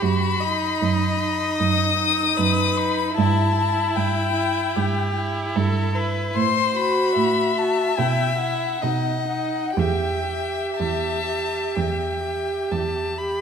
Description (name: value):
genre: classical, slow romantic movement for string quartet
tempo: 58-77 BPM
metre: 4/4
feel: rubato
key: E minor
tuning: A4 = 445 Hz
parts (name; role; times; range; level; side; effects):
- warm violin; melody; 0.0-13.2 s; E5 to D#6; -24 LUFS; left 8 dB; none
- clear violin; second line; 0.0-13.4 s; E4 to B5; -27 LUFS; left 2 dB; none
- warm cello; bass; 0.0-13.4 s; E2 to B2; -24 LUFS; right 4 dB; none
- rich viola; accompaniment; 0.4-13.4 s; D#4 to G4; -26 LUFS; right 2 dB; none
room: wet scoring stage reverb, RT60 1.8 s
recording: none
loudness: -20 LUFS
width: side -7 dB against mid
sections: 0.0-13.4 A section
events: none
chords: 0.0 B/F#; 3.2 Em/G; 6.4 F#dim/A; 8.0 Em/B; 8.8 B; 9.8 Em